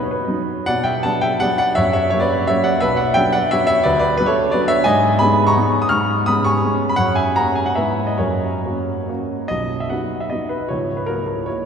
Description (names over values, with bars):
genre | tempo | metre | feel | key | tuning
classical, romantic triple-time dance for piano with dotted rhythms | 129-191 BPM | 3/4 | rubato | B minor, B major from 4.9 s | A4 = 439 Hz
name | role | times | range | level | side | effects
warm grand piano | solo | 0.0-11.7 s | B0 to E#6 | -16 LUFS | equal | none
room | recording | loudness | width
wet cathedral reverb, RT60 4.8 s | heard from further back in the room | -16 LUFS | side -7 dB against mid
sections
0.7-9.5 A section; 9.5-11.7 B section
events
none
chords
0.0 B; 0.7 Bm; 1.8 F#; 2.8 Bm; 3.9 Bm/D; 4.9 G#m; 5.9 C#7/G#; 7.0 F#; 7.8 E/G#; 8.2 F#; 9.5 B; 10.7 F#7/C#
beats
0.27 | 0.68 1.04 1.41 | 1.77 2.13 2.50 | 2.83 3.17 3.53 | 3.85 4.19 4.53 | 4.86 5.21 5.56 | 5.90 6.26 6.63 | 6.98 7.36 7.76 | 8.19 8.65 9.09 | 9.50 9.91 10.32 | 10.69 11.07 11.47